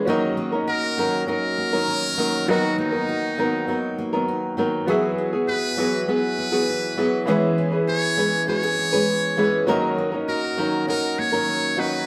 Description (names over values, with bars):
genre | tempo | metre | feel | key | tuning
acoustic pop | 100 BPM | 4/4 | straight | unclear | A4 = 441 Hz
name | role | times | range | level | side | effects
bright upright piano | accompaniment | 0.0-12.1 s | D#3 to A#5 | -33 LUFS | equal | none
flamenco guitar | accompaniment | 0.0-12.1 s | D#3 to B4 | -25 LUFS | equal | none
picked steel-string acoustic guitar | arpeggios | 0.0-12.1 s | E3 to G#4 | -31 LUFS | equal | none
trumpet with metal mute | melody | 0.7-12.1 s | D#4 to C#5 | -27 LUFS | equal | none
room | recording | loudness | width
wet large studio reverb, RT60 1.1 s | band playing live in one room | -22 LUFS | mono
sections
0.0-12.1 A section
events
none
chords
0.1 D#m7; 2.5 Bmaj7/D#; 4.9 Eadd9; 7.3 C#m7/E; 9.7 D#m7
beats
| 0.08 0.68 1.28 1.88 | 2.48 3.08 3.68 4.28 | 4.88 5.48 6.08 6.68 | 7.28 7.88 8.48 9.08 | 9.68 10.28 10.88 11.48